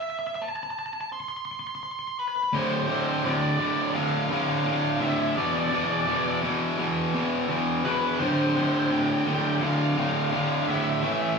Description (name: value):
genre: rock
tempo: 85 BPM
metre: 4/4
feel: straight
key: D dorian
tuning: A4 = 441 Hz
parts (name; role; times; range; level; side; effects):
- nasal lead guitar with a parked wah; melody; 0.0-11.4 s; B4 to C6; -29 LUFS; equal; overdrive
- distorted electric guitar; riff; 2.5-11.4 s; D2 to A3; -24 LUFS; equal; overdrive
room: wet studio ambience, RT60 0.5 s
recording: band playing live in one room, studio reverb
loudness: -23 LUFS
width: side -5 dB against mid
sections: 0.0-2.5 A section; 2.5-11.4 B section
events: build-up 0.0-2.5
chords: 0.0 N.C.; 2.5 Dm7; 5.4 E5; 8.2 Dm7